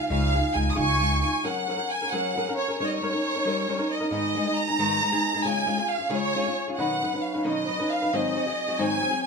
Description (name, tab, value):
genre	mexican folk, mariachi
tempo	90 BPM (dotted quarters)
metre	6/8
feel	straight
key	F# major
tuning	A4 = 439 Hz
part	rich studio violin section	melody	0.0-9.3 s	C#5 to Eb6	-25 LUFS	right 1 dB	none
part	flamenco guitar	accompaniment	0.0-9.3 s	G#2 to B4	-27 LUFS	left 2 dB	none
part	upright bass	bass	0.1-1.2 s	Db2	-25 LUFS	right 1 dB	none
room	moderate recital hall reverb, RT60 1.4 s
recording	close, detailed microphones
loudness	-23 LUFS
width	side -4 dB against mid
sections	0.0-1.4 A section; 1.4-9.3 B section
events	none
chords	0.0 Dbadd9; 1.4 F#add9; 2.8 D#7/G; 4.1 G#m; 5.4 C#; 6.8 Badd9; 8.1 G#7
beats	| 0.11 0.78 | 1.45 2.12 | 2.79 3.45 | 4.11 4.78 | 5.44 6.11 | 6.78 7.45 | 8.12 8.78